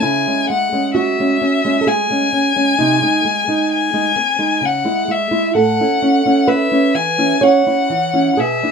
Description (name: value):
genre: romantic duo for violin and classical guitar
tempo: 65 BPM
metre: 3/4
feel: rubato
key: A major from 5.6 s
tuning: A4 = 440 Hz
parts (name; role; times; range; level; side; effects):
- rich violin; melody; 0.0-8.7 s; E5 to G#5; -17 LUFS; left 5 dB; none
- nylon-string guitar; accompaniment; 0.0-8.7 s; A2 to C#5; -16 LUFS; right 3 dB; none
room: moderate studio reverb, RT60 0.6 s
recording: minimal, uncompressed stereo recording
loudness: -13 LUFS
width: side -6 dB against mid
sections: 0.0-8.7 A section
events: none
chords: 0.0 C#m; 2.8 G#/B#; 4.6 C#m; 5.6 A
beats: | 0.02 0.97 1.88 | 2.80 3.72 4.64 | 5.57 6.50 7.42 | 8.39